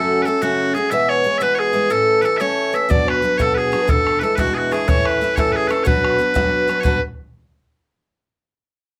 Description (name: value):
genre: celtic folk, Celtic jig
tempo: 122 BPM (dotted quarters)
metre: 6/8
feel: straight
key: B dorian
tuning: A4 = 440 Hz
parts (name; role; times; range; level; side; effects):
- loud bright bagpipes; melody; 0.0-7.0 s; F#4 to E5; -22 LUFS; equal; none
- hollow baroque flute; second line; 0.0-7.0 s; F#4 to E5; -25 LUFS; equal; none
- picked steel-string acoustic guitar; accompaniment; 0.0-7.0 s; E2 to A4; -23 LUFS; equal; none
- bodhran; percussion; 2.9-7.0 s; none; -24 LUFS; equal; none
room: moderate small room reverb, RT60 0.5 s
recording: close, detailed microphones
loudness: -18 LUFS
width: mono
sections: 0.0-6.8 A section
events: none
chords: 0.0 F#m; 0.9 E; 1.9 A; 2.9 Bm; 3.9 E7; 4.9 A; 5.9 Bm